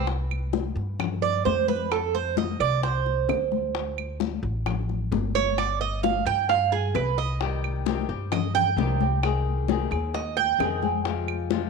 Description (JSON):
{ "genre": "latin, Cuban son and guajira", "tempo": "131 BPM", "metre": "4/4", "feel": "straight", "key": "C harmonic minor", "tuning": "A4 = 440 Hz", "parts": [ { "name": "flamenco guitar", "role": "accompaniment", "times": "0.0-0.1, 7.4-11.7 s", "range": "C3 to Ab4", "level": "-31 LUFS", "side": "left 14 dB", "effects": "none" }, { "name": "Cuban tres", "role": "arpeggios", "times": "0.0-11.0 s", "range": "Ab4 to G5", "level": "-25 LUFS", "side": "right 11 dB", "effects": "none" }, { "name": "upright bass", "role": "bass", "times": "0.0-11.7 s", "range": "G1 to G2", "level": "-28 LUFS", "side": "equal", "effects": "none" }, { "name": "bongos", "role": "percussion", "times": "0.1-11.7 s", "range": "none", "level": "-33 LUFS", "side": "left 14 dB", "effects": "none" }, { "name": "congas", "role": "percussion", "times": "0.1-11.7 s", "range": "none", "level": "-31 LUFS", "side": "left 15 dB", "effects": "none" }, { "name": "claves", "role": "percussion", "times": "0.3-11.5 s", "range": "none", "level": "-36 LUFS", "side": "right 14 dB", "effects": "none" } ], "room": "light reverb, small room ambience", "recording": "1960s-style stereo with parts hard left and right", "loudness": "-23 LUFS", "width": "side -4 dB against mid", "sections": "0.1-11.7 A section", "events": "Cuban tres solo 0.1-11.7", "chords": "0.1 C5; 1.9 F5; 3.8 D5; 5.6 Cmadd11; 7.4 Cm; 9.2 Ab/C; 11.1 Fm" }